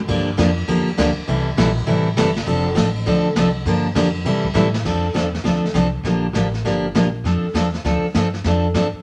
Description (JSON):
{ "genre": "country, western swing", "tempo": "201 BPM", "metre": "4/4", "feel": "swing 62% on 8ths", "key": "F major", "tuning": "A4 = 440 Hz", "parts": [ { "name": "picked steel-string acoustic guitar", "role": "accompaniment", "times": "0.1-8.9 s", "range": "C3 to A4", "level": "-21 LUFS", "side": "equal", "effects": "none" }, { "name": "upright bass", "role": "bass", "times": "0.1-9.0 s", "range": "F1 to C3", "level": "-26 LUFS", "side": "equal", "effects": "none" }, { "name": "jazz brush drum kit", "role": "drums", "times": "0.1-9.0 s", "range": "brushed snare drum, crash cymbal, hi-hat, kick drum, ride cymbal, snare drum", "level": "-27 LUFS", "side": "equal", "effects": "none" } ], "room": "moderate studio reverb, RT60 0.7 s", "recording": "none", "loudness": "-19 LUFS", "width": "mono", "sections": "0.0-4.9 A section; 4.9-9.0 B section", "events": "drum fill 4.6", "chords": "0.1 Gm7; 1.3 C6; 2.5 F6; 3.7 Gm7; 4.3 C6; 4.9 F6; 6.1 Bb6; 7.2 F6" }